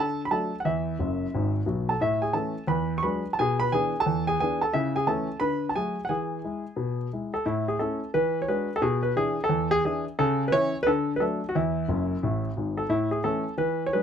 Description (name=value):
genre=jazz, stride piano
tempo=176 BPM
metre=4/4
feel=swing 64% on 8ths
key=unclear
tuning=A4 = 436 Hz
part: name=clear grand piano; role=solo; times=0.0-14.0 s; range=F#1 to C#6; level=-24 LUFS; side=equal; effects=none
room=light reverb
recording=close, detailed microphones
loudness=-24 LUFS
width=side -8 dB against mid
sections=0.0-7.5 A section; 7.5-14.0 A section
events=grand piano fill 1.0-2.0, 11.9-12.9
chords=0.0 D; 0.6 Esus2; 1.3 E; 2.0 A; 2.7 E9; 3.4 E7/B; 4.7 A/C#; 5.4 D; 6.1 E; 7.5 A; 8.1 E9; 8.8 E5/B; 10.2 C#m; 10.9 D; 11.5 Esus2; 12.2 E; 12.9 A